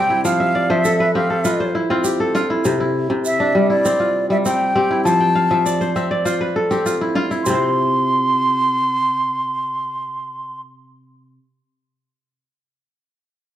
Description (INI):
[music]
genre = west african traditional, West African string and xylophone music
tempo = 100 BPM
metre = 4/4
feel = straight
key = unclear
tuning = A4 = 440 Hz
[part]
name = wooden flute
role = melody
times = 0.0-10.6 s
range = D5 to C6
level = -18 LUFS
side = right 1 dB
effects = none
[part]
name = kora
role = arpeggios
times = 0.0-11.4 s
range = C3 to G5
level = -18 LUFS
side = equal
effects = none
[part]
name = tube shaker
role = percussion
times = 0.2-7.7 s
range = none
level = -31 LUFS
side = right 6 dB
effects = none
[sound]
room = moderate recital hall reverb, RT60 1.5 s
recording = dark, warm production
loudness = -16 LUFS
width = side -11 dB against mid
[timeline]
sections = 0.0-7.5 A section; 7.5-9.9 B section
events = kora fill 0.3-2.6, 5.2-7.5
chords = 0.3 F5; 2.6 C; 5.1 F; 7.5 N.C.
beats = | 0.25 0.85 1.45 2.05 | 2.65 3.25 3.85 4.45 | 5.05 5.65 6.25 6.86 | 7.46 8.06 8.66 9.26